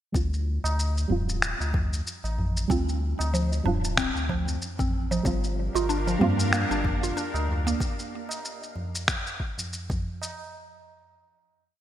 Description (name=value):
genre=organic downtempo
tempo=94 BPM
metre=4/4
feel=swing 56% on 16ths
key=G minor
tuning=A4 = 441 Hz
part: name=deep mellow chord stab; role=accompaniment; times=0.1-7.8 s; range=G3 to F4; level=-30 LUFS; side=right 3 dB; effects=chorus, sidechain pumping, digital delay
part: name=warm sub bass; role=bass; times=0.1-7.8 s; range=D1 to G2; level=-28 LUFS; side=equal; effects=none
part: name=electronic kick drum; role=drums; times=0.1-10.0 s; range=none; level=-29 LUFS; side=equal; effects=overdrive
part: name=electronic shaker and finger snaps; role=drums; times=0.2-10.3 s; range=none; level=-30 LUFS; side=left 1 dB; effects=gated reverb
part: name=tabla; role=percussion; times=0.6-10.3 s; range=none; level=-34 LUFS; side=right 1 dB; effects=none
part: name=mallet-like synth pluck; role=arpeggios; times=2.7-7.8 s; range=F3 to F4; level=-30 LUFS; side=right 2 dB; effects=chorus, phaser, digital delay
part: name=bowed-like drone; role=sustained chords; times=5.6-7.8 s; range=D4 to F5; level=-34 LUFS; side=left 2 dB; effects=built-in reverb, sidechain pumping
room=moderate lush hall reverb, RT60 2.2 s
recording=bright 1980s-style digital production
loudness=-24 LUFS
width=side -12 dB against mid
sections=0.1-10.4 groove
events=filter sweep on synth stab 0.1-7.8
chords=0.1 Dm7; 5.2 Gm7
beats=| 0.14 0.78 1.42 2.06 | 2.70 3.33 3.97 4.61 | 5.25 5.89 6.53 7.17 | 7.80 8.44 9.08 9.72